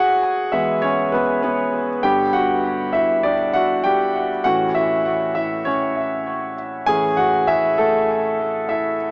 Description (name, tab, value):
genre	pop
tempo	99 BPM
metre	4/4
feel	swing 56% on 16ths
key	A major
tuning	A4 = 440 Hz
part	warm concert grand piano	solo	0.0-9.1 s	G2 to G#5	-16 LUFS	equal	dub echo
room	moderate spring reverb, RT60 1.6 s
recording	echo-heavy mix, small speaker sound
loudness	-17 LUFS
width	side -36 dB against mid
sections	0.0-9.1 A section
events	grand piano solo 0.0-9.1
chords	0.0 E; 2.0 G; 4.5 A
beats	0.23 0.83 1.44 | 2.04 2.65 3.25 3.86 | 4.46 5.07 5.67 6.28 | 6.88 7.49 8.10 8.70